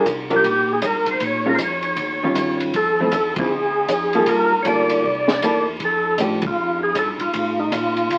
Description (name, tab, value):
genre	soul jazz organ trio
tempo	157 BPM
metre	4/4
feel	swing 64% on 8ths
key	F major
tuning	A4 = 435 Hz
part	percussive tonewheel organ	melody	0.0-8.2 s	Eb4 to D5	-22 LUFS	equal	slow rotary speaker, overdrive, chorus vibrato
part	vintage hollow-body jazz guitar	accompaniment	0.0-6.4 s	D3 to Bb4	-23 LUFS	equal	none
part	mellow tonewheel organ	bass	0.0-8.2 s	C2 to Bb2	-34 LUFS	equal	slow rotary speaker
part	compact cocktail drum kit	drums	0.1-8.2 s	hi-hat, kick drum, ride cymbal, snare drum	-28 LUFS	equal	none
room	wet studio reverb, RT60 0.8 s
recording	very old 78 rpm record, vinyl crackle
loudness	-20 LUFS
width	mono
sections	0.0-8.2 A section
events	band accent 3.3, 6.4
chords	0.0 Gm; 1.2 Bbm7; 2.0 Eb9; 2.7 Fmaj7; 3.5 Gm9; 5.0 C13; 5.8 Fadd9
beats	0.06 0.45 0.83 | 1.21 1.59 1.98 2.36 | 2.74 3.13 3.51 3.89 | 4.28 4.66 5.04 5.42 | 5.81 6.19 6.58 6.96 | 7.34 7.72 8.11